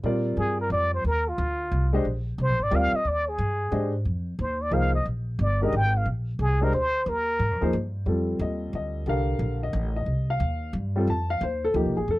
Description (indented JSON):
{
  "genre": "modal jazz",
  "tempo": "179 BPM",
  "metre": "3/4",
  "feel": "swing 65% on 8ths",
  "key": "Bb mixolydian, F mixolydian from 8.1 s",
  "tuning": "A4 = 439 Hz",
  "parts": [
    { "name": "warm upright piano", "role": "accompaniment", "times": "0.0-12.2 s", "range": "D3 to A5", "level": "-27 LUFS", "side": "left 1 dB", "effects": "none" },
    { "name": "upright bass", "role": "bass", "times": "0.0-12.2 s", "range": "G1 to Bb2", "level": "-26 LUFS", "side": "equal", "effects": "none" },
    { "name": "trumpet with plunger mute", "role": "melody", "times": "0.4-7.7 s", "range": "F4 to G5", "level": "-26 LUFS", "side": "equal", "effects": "none" }
  ],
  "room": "little or no reverb",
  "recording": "dry, close 1970s-style studio recording",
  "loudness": "-23 LUFS",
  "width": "side -18 dB against mid",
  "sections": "0.0-8.1 A section; 8.1-12.2 B section",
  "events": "none",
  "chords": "0.0 Bb7sus4; 8.1 F13"
}